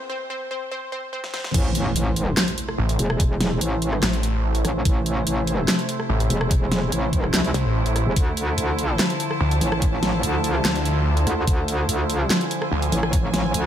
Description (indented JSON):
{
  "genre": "heavy wobble dubstep",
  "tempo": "145 BPM",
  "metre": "4/4",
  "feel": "half-time",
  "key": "A harmonic minor",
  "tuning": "A4 = 440 Hz",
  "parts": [
    { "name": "wide unison pluck", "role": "melody", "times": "0.0-1.5 s", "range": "C4 to C5", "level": "-30 LUFS", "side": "left 1 dB", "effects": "cassette tape, tape echo" },
    { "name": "dubstep drum kit", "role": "drums", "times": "1.2-13.6 s", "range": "crash cymbal, handclaps, hi-hat, rim click, snare drum", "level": "-24 LUFS", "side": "equal", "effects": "none" },
    { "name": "evolving wavetable pad", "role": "sustained chords", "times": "2.5-13.7 s", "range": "C3 to E4", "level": "-28 LUFS", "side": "right 2 dB", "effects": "chorus, built-in reverb, sidechain pumping" },
    { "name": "metallic wobble bass", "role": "bass", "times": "1.5-13.7 s", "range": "E1 to D2", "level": "-23 LUFS", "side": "equal", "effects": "chorus, overdrive" },
    { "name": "electronic kick drum", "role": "drums", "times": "1.5-13.2 s", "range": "none", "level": "-21 LUFS", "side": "equal", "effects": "none" },
    { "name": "impact", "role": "sound effects", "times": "1.5-3.2 s", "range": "none", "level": "-29 LUFS", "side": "equal", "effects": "none" },
    { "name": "dark studio string section", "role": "texture", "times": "1.5-13.7 s", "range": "C5 to A5", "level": "-32 LUFS", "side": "equal", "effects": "sidechain pumping" },
    { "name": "snarling distorted saw bass", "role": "bass", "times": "2.8-12.9 s", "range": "A1 to D2", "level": "-21 LUFS", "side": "equal", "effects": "distortion, overdrive" }
  ],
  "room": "little or no reverb",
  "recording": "high-pass filter",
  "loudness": "-20 LUFS",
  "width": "side -10 dB against mid",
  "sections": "0.0-1.5 A section; 1.5-13.7 B section",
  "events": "break 0.0-1.5; build-up 0.0-1.5; drum fill 1.2-1.5; drop 1.5-13.7; impact 1.5-3.2",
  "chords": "0.0 N.C.; 1.5 Am; 8.2 Dmadd9",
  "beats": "0.30 0.72 1.13 | 1.54 1.96 2.37 2.79 | 3.20 3.61 4.03 4.44 | 4.85 5.27 5.68 6.09 | 6.51 6.92 7.34 7.75 | 8.16 8.58 8.99 9.41 | 9.82 10.23 10.65 11.06 | 11.47 11.89 12.30 12.72 | 13.13 13.54"
}